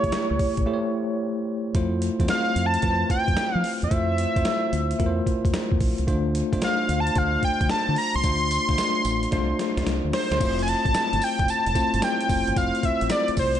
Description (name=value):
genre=R&B, new jack swing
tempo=111 BPM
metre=4/4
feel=swing 67% on 16ths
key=unclear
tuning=A4 = 445 Hz
part: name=octave-doubled lead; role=melody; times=0.0-13.6 s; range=C5 to C6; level=-25 LUFS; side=equal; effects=chorus, ping-pong delay
part: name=bell-like tine electric piano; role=accompaniment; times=0.0-13.6 s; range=A3 to C#5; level=-27 LUFS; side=left 2 dB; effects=medium stereo tremolo
part: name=deep dub fingered electric bass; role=bass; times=0.0-13.6 s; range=E1 to F3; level=-27 LUFS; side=equal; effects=none
part: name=boom bap sampler-style drum kit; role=drums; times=0.0-13.6 s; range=crash cymbal, hi-hat, kick drum, snare drum, tambourine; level=-27 LUFS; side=equal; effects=none
room=light reverb, digital ambience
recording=nothing above 10.4 kHz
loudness=-21 LUFS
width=side -10 dB against mid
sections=0.0-1.8 A section; 1.8-10.4 B section; 10.4-13.6 C section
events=break 0.7-1.8; drum fill 9.3-10.4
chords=0.0 A7; 1.8 Fmaj7; 6.1 Dm7; 10.4 Fmaj7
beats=0.13 0.67 1.21 | 1.75 2.29 2.83 3.37 | 3.91 4.45 4.99 5.54 | 6.08 6.62 7.16 7.70 | 8.24 8.78 9.32 9.86 | 10.40 10.94 11.48 12.02 | 12.56 13.10